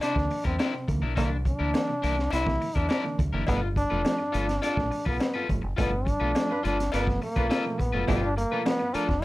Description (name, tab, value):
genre	funk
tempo	104 BPM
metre	4/4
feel	straight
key	G mixolydian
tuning	A4 = 436 Hz
part	clear trombone	melody	0.0-9.2 s	Bb3 to E4	-29 LUFS	equal	none
part	electric guitar at the edge of break-up	accompaniment	0.0-9.1 s	D4 to D5	-33 LUFS	left 5 dB	none
part	barky reed electric piano	stabs	0.0-9.1 s	G2 to Bb3	-34 LUFS	right 4 dB	fast tremolo
part	crunchy breakbeat drum kit	drums	0.0-9.2 s	hi-hat, kick drum, snare drum	-30 LUFS	equal	none
part	cowbell	percussion	0.0-9.2 s	none	-38 LUFS	left 4 dB	none
part	deep dub fingered electric bass	bass	0.2-9.2 s	F1 to E2	-29 LUFS	equal	none
part	mellow horn section	second line	6.5-9.0 s	B3 to B4	-35 LUFS	right 1 dB	none
room	little or no reverb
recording	none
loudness	-24 LUFS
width	side -18 dB against mid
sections	0.0-8.1 A section; 8.1-9.2 B section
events	band accent 5.8-8.1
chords	0.0 C9; 3.5 G9